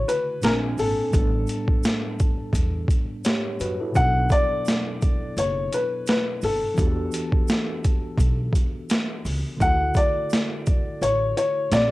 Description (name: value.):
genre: lo-fi hip hop.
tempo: 85 BPM.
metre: 4/4.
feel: swing 55% on 16ths.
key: E dorian.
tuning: A4 = 440 Hz.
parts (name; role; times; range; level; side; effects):
dark upright piano; melody; 0.0-11.9 s; A4 to F#5; -25 LUFS; left 2 dB; low-pass filter, cassette tape.
tine electric piano; accompaniment; 0.0-11.9 s; A2 to G#5; -30 LUFS; equal; overdrive, fast stereo tremolo, low-pass filter, cassette tape.
boom bap sampler-style drum kit; drums; 0.1-11.9 s; hi-hat, kick drum, snare drum; -23 LUFS; equal; overdrive.
maracas; percussion; 0.1-11.9 s; none; -44 LUFS; right 10 dB; none.
upright bass; bass; 0.4-11.9 s; F#1 to F#2; -26 LUFS; equal; none.
room: light reverb.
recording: home recording on cassette.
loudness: -20 LUFS.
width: side -18 dB against mid.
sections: 0.0-11.9 A section.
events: none.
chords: 0.4 A#9; 1.1 A7sus4; 4.0 Bm7; 6.8 Em11; 9.6 D.